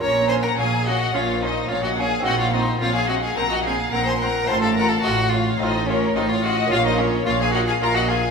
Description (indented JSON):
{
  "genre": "classical, baroque-style concerto movement with solo episodes",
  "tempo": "108 BPM",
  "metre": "4/4",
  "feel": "straight",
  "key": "Bb minor",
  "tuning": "A4 = 444 Hz",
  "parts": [
    { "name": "rich studio violin section", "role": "melody", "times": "0.0-8.3 s", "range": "Db5 to Db6", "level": "-25 LUFS", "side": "left 4 dB", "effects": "none" },
    { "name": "rich violin", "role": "melody", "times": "0.0-8.3 s", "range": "Db4 to Db5", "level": "-24 LUFS", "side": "left 1 dB", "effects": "none" },
    { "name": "rich studio violin section", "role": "second line", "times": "0.0-8.3 s", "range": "Bb4 to Bb5", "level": "-26 LUFS", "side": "left 3 dB", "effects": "none" },
    { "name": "lute", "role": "accompaniment", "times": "0.0-8.3 s", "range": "A2 to Bb4", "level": "-30 LUFS", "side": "right 1 dB", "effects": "none" },
    { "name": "rich chamber viola section", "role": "accompaniment", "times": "0.0-8.2 s", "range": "C4 to F4", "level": "-29 LUFS", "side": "right 2 dB", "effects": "none" },
    { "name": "dark chamber double bass section", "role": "bass", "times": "0.0-8.3 s", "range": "A1 to Bb1", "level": "-28 LUFS", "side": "right 2 dB", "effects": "none" },
    { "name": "rich chamber cello section", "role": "bass", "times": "0.0-8.3 s", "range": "A2 to Bb2", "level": "-26 LUFS", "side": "right 2 dB", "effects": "none" }
  ],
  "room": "wet recital hall reverb, RT60 1.4 s",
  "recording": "recorded in a church or concert hall",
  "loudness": "-18 LUFS",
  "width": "side -5 dB against mid",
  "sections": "0.0-8.3 A section",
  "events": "none",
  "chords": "0.0 Bbm; 2.3 Cm7b5/Bb; 4.5 F7/A; 6.7 Bbm",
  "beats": "| 0.02 0.58 1.14 1.70 | 2.26 2.81 3.37 3.94 | 4.49 5.05 5.60 6.16 | 6.71 7.27 7.82"
}